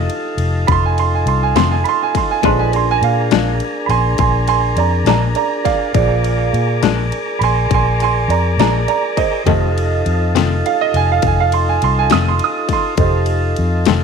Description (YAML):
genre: slow blues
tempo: 68 BPM (dotted quarters)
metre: 12/8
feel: straight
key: unclear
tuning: A4 = 440 Hz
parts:
  - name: warm upright piano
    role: second line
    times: 0.0-13.8 s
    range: C5 to Eb6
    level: -18 LUFS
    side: right 12 dB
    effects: none
  - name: dark baby grand piano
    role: accompaniment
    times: 0.0-14.0 s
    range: F4 to Eb5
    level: -26 LUFS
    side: right 13 dB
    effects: none
  - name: tonewheel organ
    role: sustained chords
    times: 0.0-14.0 s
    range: D4 to D5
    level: -22 LUFS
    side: left 1 dB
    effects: slow rotary speaker
  - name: vintage muted fingered electric bass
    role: bass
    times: 0.0-14.0 s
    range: F1 to Bb2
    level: -17 LUFS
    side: left 2 dB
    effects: none
  - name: dubstep drum kit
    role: drums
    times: 0.1-14.0 s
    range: kick drum, ride cymbal, snare drum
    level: -21 LUFS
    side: left 7 dB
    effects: none
  - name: clean electric guitar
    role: accompaniment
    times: 1.6-14.0 s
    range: F2 to D4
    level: -19 LUFS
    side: left 15 dB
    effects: tremolo
room: light reverb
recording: 1960s-style stereo with parts hard left and right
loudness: -13 LUFS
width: side -6 dB against mid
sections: 0.0-14.0 A section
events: upright piano solo 0.0-14.0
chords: 0.0 F7; 2.4 Bb7; 9.5 F7